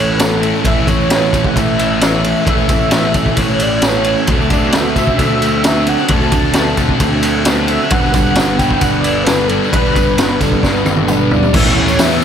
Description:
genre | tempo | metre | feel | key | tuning
rock, shoegaze and dream pop | 132 BPM | 4/4 | straight | A mixolydian | A4 = 440 Hz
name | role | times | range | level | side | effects
warm velvety synth lead | melody | 0.0-12.2 s | A4 to A5 | -19 LUFS | equal | chorus, analog delay
direct-recorded clean electric guitar | arpeggios | 0.0-12.2 s | E3 to D4 | -26 LUFS | left 9 dB | ensemble chorus, analog delay
crunchy overdriven guitar | riff | 0.0-12.2 s | A2 to B4 | -20 LUFS | right 12 dB | reverse reverb
thick fuzz guitar | riff | 0.0-12.2 s | G2 to D4 | -20 LUFS | left 11 dB | distortion, lush chorus
fuzz picked electric bass | bass | 0.0-12.2 s | G1 to E2 | -19 LUFS | equal | overdrive
raw garage drum kit | drums | 0.2-12.1 s | crash cymbal, hi-hat, kick drum, ride cymbal, snare drum, toms | -15 LUFS | equal | none
tambourine | percussion | 0.2-12.2 s | none | -33 LUFS | right 4 dB | none
sludgy distorted guitar | riff | 11.5-12.2 s | A2 to E4 | -20 LUFS | left 1 dB | overdrive
room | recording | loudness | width
light reverb, small room ambience | none | -11 LUFS | side -8 dB against mid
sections
0.0-11.6 A section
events
drum fill 10.6-11.6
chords
0.0 A; 4.3 D7; 7.9 Gmaj7; 11.6 A

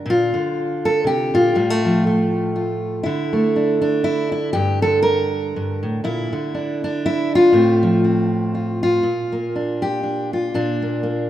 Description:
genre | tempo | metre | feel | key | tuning
folk, solo fingerstyle acoustic guitar | 120 BPM | 3/4 | swing 57% on 8ths | unclear | A4 = 440 Hz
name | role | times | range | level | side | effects
fingerpicked steel-string acoustic guitar | solo | 0.0-11.3 s | G2 to Bb4 | -17 LUFS | equal | none
room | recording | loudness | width
moderate lush hall reverb, RT60 2.6 s | rough home demo mix | -17 LUFS | side -12 dB against mid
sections
0.0-9.0 A section; 9.0-11.3 B section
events
none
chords
0.0 Bb; 1.5 F/A; 3.0 Dsus2; 4.5 Gm; 6.0 Bb; 7.5 F/A; 9.0 Bb

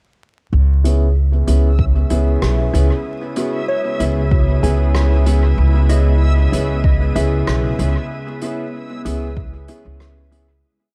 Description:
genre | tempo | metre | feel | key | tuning
ambient dub | 95 BPM | 4/4 | swing 53% on 16ths | C# minor | A4 = 436 Hz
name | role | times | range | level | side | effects
soft additive organ-like pad | sustained chords | 2.3-10.6 s | C#3 to D#6 | -30 LUFS | equal | ensemble chorus, built-in reverb
upright bass | bass | 0.5-10.6 s | B1 to C#2 | -17 LUFS | equal | none
backwards swelling texture | texture | 1.6-10.6 s | E4 to E5 | -33 LUFS | equal | built-in reverb
warm upright piano | stabs | 0.8-10.5 s | B3 to G#4 | -26 LUFS | equal | low-pass filter, dub echo
soft-mallet drum kit | drums | 0.8-10.5 s | hi-hat, rim click | -32 LUFS | equal | dub echo
electronic kick drum | drums | 1.8-9.5 s | none | -19 LUFS | equal | none
soft synth bell | arpeggios | 3.4-10.7 s | F#4 to G#5 | -29 LUFS | equal | chorus, phaser, tape echo
room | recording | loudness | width
little or no reverb | vinyl crackle | -16 LUFS | mono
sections
0.5-10.6 groove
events
fade-in on ambient pad 0.5-10.6; filter sweep on upright piano 0.5-10.6; fade-out 7.3-10.6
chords
0.5 C#m7

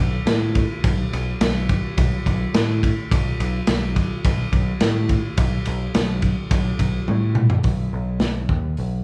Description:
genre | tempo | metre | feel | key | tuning
psychedelic rock | 106 BPM | 4/4 | straight | unclear | A4 = 440 Hz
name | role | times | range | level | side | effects
overdriven picked electric bass | bass | 0.0-9.0 s | B1 to A2 | -25 LUFS | equal | none
crunchy breakbeat drum kit | drums | 0.3-8.9 s | hi-hat, kick drum, ride cymbal, snare drum, toms | -23 LUFS | equal | none
room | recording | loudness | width
moderate large studio reverb, RT60 1.3 s | band playing live in one room | -21 LUFS | mono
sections
0.0-7.7 A section; 7.7-9.0 B section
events
drum fill 7.1-7.7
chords
none

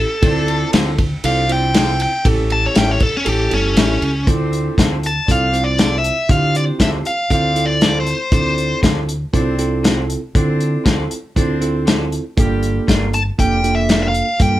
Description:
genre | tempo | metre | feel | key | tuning
straight-eighth soul blues | 118 BPM | 4/4 | swing 55% on 16ths | D minor | A4 = 440 Hz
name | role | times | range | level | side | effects
biting lead guitar | melody | 0.0-8.8, 13.1-14.6 s | C#4 to A5 | -18 LUFS | left 1 dB | overdrive
bell-like tine electric piano | accompaniment | 0.0-14.6 s | Bb3 to C5 | -22 LUFS | right 4 dB | none
deep dub fingered electric bass | bass | 0.0-14.6 s | F1 to D3 | -20 LUFS | equal | none
warm horn section | sustained chords | 0.2-14.6 s | G3 to C5 | -27 LUFS | left 1 dB | none
warm soul drum kit | drums | 0.2-14.5 s | hi-hat, kick drum, ride cymbal, snare drum | -17 LUFS | left 1 dB | none
electric guitar through a small old amp | stabs | 0.7-14.1 s | A2 to Bb4 | -25 LUFS | left 3 dB | none
room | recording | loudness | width
moderate studio reverb, RT60 0.5 s | band playing live in one room | -14 LUFS | side -14 dB against mid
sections
0.0-4.3 A section; 4.3-14.6 B section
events
lead electric guitar solo 0.0-4.3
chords
0.2 Dm7; 2.2 A7; 4.3 Dm7; 12.4 Gm7

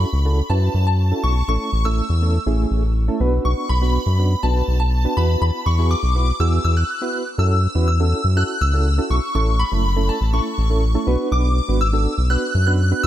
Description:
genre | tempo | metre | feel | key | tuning
dance-pop | 122 BPM | 4/4 | straight | unclear | A4 = 443 Hz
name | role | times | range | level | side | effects
shimmering bell with halo | melody | 0.0-13.1 s | A5 to F#6 | -24 LUFS | left 1 dB | ensemble chorus, dub echo
soft electric-piano-like synth keys | accompaniment | 0.0-13.1 s | A3 to B4 | -25 LUFS | right 2 dB | chorus, tremolo
round analog bass | bass | 0.0-13.1 s | F#1 to F#2 | -17 LUFS | equal | none
room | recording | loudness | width
little or no reverb | dark, warm production | -16 LUFS | side -12 dB against mid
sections
0.0-7.4 A section; 7.4-13.1 B section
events
break 6.9-7.4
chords
0.0 F#m7; 1.5 A; 3.2 Bm; 5.2 Esus2; 7.4 F#m7; 9.3 A; 11.1 Bm

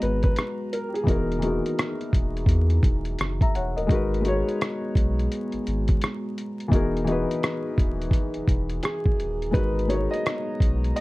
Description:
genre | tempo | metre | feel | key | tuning
lo-fi hip hop | 85 BPM | 4/4 | swing 61% on 16ths | G# minor | A4 = 438 Hz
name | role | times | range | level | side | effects
dark upright piano | melody | 0.0-2.1, 8.8-11.0 s | G4 to D#5 | -30 LUFS | right 1 dB | low-pass filter
felt-muted upright piano | accompaniment | 0.0-11.0 s | E3 to A#5 | -28 LUFS | left 2 dB | low-pass filter
dark analog pad | sustained chords | 0.0-11.0 s | E3 to A#5 | -34 LUFS | right 1 dB | chorus, low-pass filter
sub bass with octave | bass | 0.0-10.9 s | D#1 to E2 | -26 LUFS | equal | none
lo-fi sampler-style drum kit | drums | 0.0-11.0 s | hi-hat, kick drum, rim click | -23 LUFS | equal | none
room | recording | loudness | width
light reverb | vinyl crackle | -22 LUFS | side -20 dB against mid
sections
0.0-11.0 A section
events
none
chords
0.0 G#m9; 1.1 Emaj9#11; 3.9 G#m9; 6.7 Emaj9#11; 9.5 G#m9

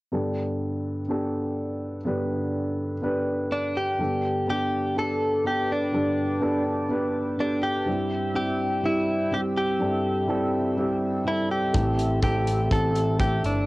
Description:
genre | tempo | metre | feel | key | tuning
piano-driven pop | 124 BPM | 4/4 | straight | unclear | A4 = 436 Hz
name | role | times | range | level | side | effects
dark upright piano | accompaniment | 0.1-13.7 s | G2 to B4 | -26 LUFS | equal | cassette tape
direct-recorded clean electric guitar | melody | 3.5-13.7 s | D4 to A4 | -26 LUFS | equal | cassette tape
chorused pulse-width pad | sustained chords | 4.0-13.7 s | C4 to E6 | -33 LUFS | equal | cassette tape
overdriven picked electric bass | bass | 11.7-13.7 s | G1 to A1 | -25 LUFS | equal | none
modern studio drum kit | drums | 11.7-13.6 s | hi-hat, kick drum | -27 LUFS | equal | cassette tape
room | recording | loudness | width
light reverb | home recording on cassette | -23 LUFS | side -20 dB against mid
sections
0.1-4.0 A section; 4.0-13.7 B section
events
none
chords
0.1 Gadd9; 7.9 C/G

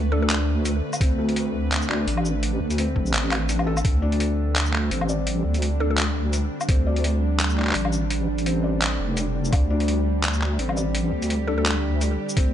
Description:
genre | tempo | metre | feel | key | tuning
half-time drum and bass | 169 BPM | 4/4 | swing 56% on 16ths, half-time | unclear | A4 = 439 Hz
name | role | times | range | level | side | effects
bowed-like drone | sustained chords | 0.0-12.5 s | D3 to B4 | -30 LUFS | right 2 dB | built-in reverb, sidechain pumping
felt-muted upright piano | arpeggios | 0.0-12.5 s | A3 to D5 | -30 LUFS | left 4 dB | vintage 12-bit sampler grit, tape echo
deep soft wobble bass | bass | 0.0-12.5 s | F1 to D2 | -23 LUFS | equal | chorus
mallet-like synth pluck | melody | 0.1-0.3, 5.8-6.0, 11.5-11.6 s | A4 | -33 LUFS | equal | chorus, tape echo
boom bap sampler-style drum kit | drums | 0.3-12.4 s | handclaps, hi-hat, shaker, woodblock | -26 LUFS | left 1 dB | none
electronic kick drum | drums | 1.0-3.9, 6.7-6.8, 9.5-9.6, 12.4 s | none | -21 LUFS | equal | none
room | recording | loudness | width
light reverb | dark, warm production, nothing above 10.4 kHz | -20 LUFS | side -10 dB against mid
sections
0.0-12.5 A section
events
none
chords
0.0 D5

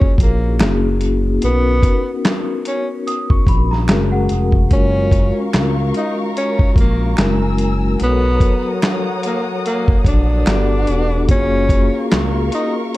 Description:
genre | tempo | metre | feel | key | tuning
lo-fi hip hop | 73 BPM | 4/4 | swing 57% on 16ths | F# major | A4 = 440 Hz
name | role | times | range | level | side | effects
breathy tenor saxophone | melody | 0.0-12.7 s | A#3 to D#4 | -22 LUFS | equal | low-pass filter, analog delay
vibraphone with soft mallets | accompaniment | 0.0-13.0 s | F#3 to C#5 | -20 LUFS | left 2 dB | cassette tape, low-pass filter
dusty soul sampler-style drum kit | drums | 0.0-13.0 s | handclaps, hi-hat, kick drum, snare drum | -16 LUFS | equal | vintage 12-bit sampler grit
smooth gliding synth bass | bass | 0.2-12.5 s | E1 to C#2 | -18 LUFS | equal | none
finger snap | percussion | 0.6-12.3 s | none | -33 LUFS | right 4 dB | none
celesta | second line | 3.1-4.7 s | F#5 to D#6 | -26 LUFS | right 1 dB | low-pass filter, analog delay
warm studio string section | sustained chords | 4.7-13.0 s | A#4 to E6 | -27 LUFS | equal | low-pass filter
room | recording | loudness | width
light reverb, small room ambience | dark, warm production | -14 LUFS | side -17 dB against mid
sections
0.0-4.7 A section; 4.7-13.0 B section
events
none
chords
0.0 F#maj7; 0.6 F#9; 1.4 Bmaj9; 3.9 F#maj9; 4.7 F#maj7; 7.2 F#9; 8.0 Bmaj9; 10.5 Gmaj7; 11.3 F#maj7

